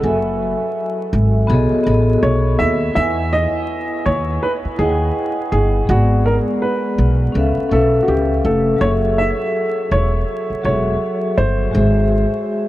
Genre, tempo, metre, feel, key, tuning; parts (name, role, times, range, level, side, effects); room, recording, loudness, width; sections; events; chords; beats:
lo-fi hip hop; 82 BPM; 4/4; swing 61% on 16ths; A4 = 440 Hz
dark upright piano; melody; 0.0-12.1 s; F#4 to E5; -21 LUFS; equal; low-pass filter
vibraphone with soft mallets; accompaniment; 0.0-12.7 s; F#3 to G#5; -19 LUFS; left 1 dB; cassette tape, low-pass filter
upright bass; bass; 0.0-12.2 s; E1 to E2; -17 LUFS; equal
moderate huge ambient reverb, RT60 6.9 s; dreamy mix soaked in reverb, vinyl crackle; -15 LUFS; side -15 dB against mid
0.0-12.7 A section
0.0 F#m7; 1.5 B13; 3.0 Emaj9; 5.9 G#m7b5; 7.4 C#7alt; 8.8 F#m9; 11.7 G#7b13
| 0.04 0.77 1.50 2.23 | 2.96 3.69 4.42 5.16 | 5.89 6.62 7.35 8.08 | 8.82 9.55 10.28 11.01 | 11.74 12.47